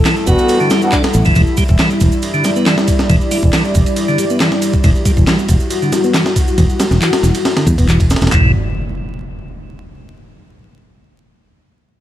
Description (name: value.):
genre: breakbeat, breaks.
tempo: 138 BPM.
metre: 4/4.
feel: straight.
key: E minor.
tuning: A4 = 440 Hz.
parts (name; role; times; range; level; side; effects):
dark analog pad; sustained chords; 0.0-8.5 s; G3 to D5; -18 LUFS; left 1 dB; chorus, vintage 12-bit sampler grit, sidechain pumping.
tonewheel organ; riff; 0.1-8.5 s; D3 to D4; -18 LUFS; equal; stopped rotary speaker, low-pass filter.
breakbeat sampler-style drum kit; drums; 0.1-8.4 s; handclaps, hi-hat, kick drum, ride cymbal, snare drum, toms; -15 LUFS; equal; none.
electronic handclaps and shaker; drums; 0.1-8.3 s; none; -24 LUFS; right 1 dB; none.
mellow brass ensemble; stabs; 0.3-0.9 s; G3 to F#4; -18 LUFS; equal; ping-pong delay.
fingered electric bass; bass; 0.3-8.5 s; E1 to E2; -13 LUFS; equal; none.
impact; sound effects; 8.3-10.1 s; none; -24 LUFS; equal; none.
room: light reverb.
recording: vinyl crackle.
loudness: -11 LUFS.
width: side -12 dB against mid.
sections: 0.0-8.3 A section; 8.3-10.1 B section.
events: filter sweep on tonewheel organ 0.0-8.3.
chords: 0.0 Em7.